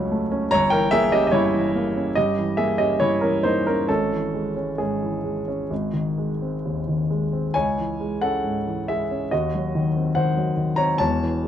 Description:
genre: classical, romantic character piece for solo piano.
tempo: 64-74 BPM.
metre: 4/4.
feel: rubato.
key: unclear.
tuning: A4 = 440 Hz.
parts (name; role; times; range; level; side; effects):
warm grand piano; solo; 0.0-11.5 s; E1 to Bb5; -20 LUFS; equal; none.
room: light reverb.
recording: dark, warm production, nothing above 10.8 kHz.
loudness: -20 LUFS.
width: side -10 dB against mid.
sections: 0.0-11.5 A section.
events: none.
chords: 0.0 F#m; 0.5 Gdim7; 3.9 C#m/G#; 5.7 G#; 7.5 C#m; 9.3 Cdim/Eb.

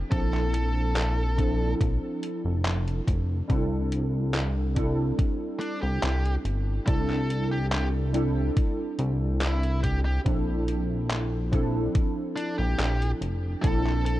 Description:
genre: vaporwave.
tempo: 71 BPM.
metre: 4/4.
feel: straight.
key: C mixolydian.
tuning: A4 = 444 Hz.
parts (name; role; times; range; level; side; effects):
warbly lo-fi synth keys; accompaniment; 0.0-14.2 s; F3 to A4; -30 LUFS; right 1 dB; ensemble chorus, analog delay.
chorused synth bass; bass; 0.0-14.2 s; F1 to C2; -26 LUFS; equal; tube saturation.
high-gain lead guitar; melody; 0.1-14.2 s; D4 to A4; -35 LUFS; equal; distortion, tape echo.
detuned 8-bit digital drum machine; drums; 0.1-14.2 s; handclaps, hi-hat; -33 LUFS; equal; overdrive.
electronic kick drum; drums; 0.1-13.8 s; none; -26 LUFS; equal; overdrive.
room: little or no reverb.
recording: dark, warm production, cassette tape.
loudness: -24 LUFS.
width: side -15 dB against mid.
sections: 0.0-14.2 A section.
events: none.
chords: 0.0 Bbmaj9#11; 3.5 C6; 10.3 Bbmaj9#11.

